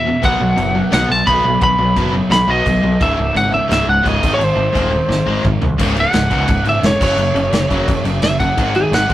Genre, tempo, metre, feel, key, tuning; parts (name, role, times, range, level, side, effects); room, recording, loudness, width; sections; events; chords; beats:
punk rock; 173 BPM; 4/4; straight; C# minor; A4 = 440 Hz
lightly driven lead guitar; melody; 0.0-9.1 s; G#4 to B5; -16 LUFS; equal
cranked stack guitar; riff; 0.0-9.1 s; C#2 to B3; -21 LUFS; left 4 dB; overdrive
thick fuzz guitar; riff; 0.0-9.1 s; C#2 to B3; -26 LUFS; equal
tight distorted guitar; riff; 0.0-9.1 s; C#2 to B3; -23 LUFS; right 4 dB; distortion
growling picked electric bass; bass; 0.2-9.1 s; C#1 to G#2; -20 LUFS; equal; overdrive
loose indie drum kit; drums; 0.2-9.1 s; crash cymbal, kick drum, snare drum, toms; -20 LUFS; equal
light reverb; rough rehearsal-room recording; -13 LUFS; side -14 dB against mid
0.0-5.8 A section; 5.8-9.1 B section
half time 0.0-5.8; drum fill 5.1-5.8; lead electric guitar solo 5.8-9.1
0.2 B5; 3.0 C#m; 4.2 G#; 5.8 C#5; 7.0 F#5; 8.6 G#5
| 0.24 0.58 0.93 1.28 | 1.62 1.97 2.32 2.67 | 3.01 3.36 3.71 4.05 | 4.40 4.75 5.10 5.45 | 5.79 6.14 6.49 6.84 | 7.19 7.54 7.88 8.23 | 8.58 8.93